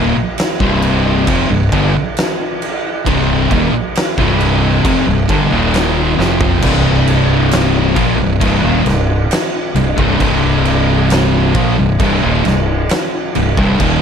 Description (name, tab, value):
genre	stoner and doom metal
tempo	67 BPM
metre	4/4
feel	straight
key	C minor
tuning	A4 = 441 Hz
part	distorted electric guitar	riff	0.0-14.0 s	C2 to F3	-18 LUFS	equal	overdrive
part	fuzz guitar	riff	0.0-14.0 s	C2 to F3	-17 LUFS	left 8 dB	distortion
part	thick fuzz guitar	riff	0.0-14.0 s	C2 to F3	-18 LUFS	right 7 dB	distortion
part	growling fingered electric bass	bass	0.0-14.0 s	C1 to Bb1	-18 LUFS	equal	overdrive
part	oversized low-tuned drum kit	drums	0.4-14.0 s	crash cymbal, kick drum, snare drum, toms	-17 LUFS	right 1 dB	none
room	light reverb, small room ambience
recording	none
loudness	-11 LUFS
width	side -7 dB against mid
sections	0.0-6.6 A section; 6.6-14.0 B section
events	drum fill 6.2-6.6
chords	0.0 Cm